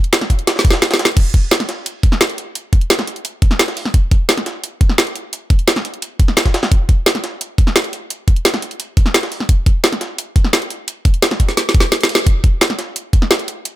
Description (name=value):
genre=drum and bass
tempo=173 BPM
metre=4/4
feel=straight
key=none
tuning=none
part: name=drum and bass drum kit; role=drums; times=0.0-13.7 s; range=crash cymbal, hi-hat, snare drum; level=-16 LUFS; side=equal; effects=none
part: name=jungle sampler-style drum kit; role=drums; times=0.1-13.7 s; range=hi-hat, snare drum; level=-24 LUFS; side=equal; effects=high-pass filter on snare, high-pass filter on hats, high-pass filter on room
part: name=electronic kick drum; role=drums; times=0.3-13.2 s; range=none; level=-12 LUFS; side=equal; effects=none
room=little or no reverb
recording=none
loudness=-13 LUFS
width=side -15 dB against mid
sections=0.0-12.3 A section; 12.3-13.8 A section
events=drop 0.0-12.3, 12.3-13.8; drum fill 0.5-1.2, 11.6-12.3; band accent 12.1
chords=none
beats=0.13 0.47 0.82 | 1.17 1.51 1.86 2.21 | 2.55 2.90 3.25 3.60 | 3.94 4.29 4.63 4.98 | 5.33 5.67 6.02 6.37 | 6.72 7.06 7.41 7.76 | 8.10 8.45 8.80 9.14 | 9.49 9.84 10.18 10.53 | 10.88 11.22 11.57 11.92 | 12.27 12.61 12.96 13.31 | 13.65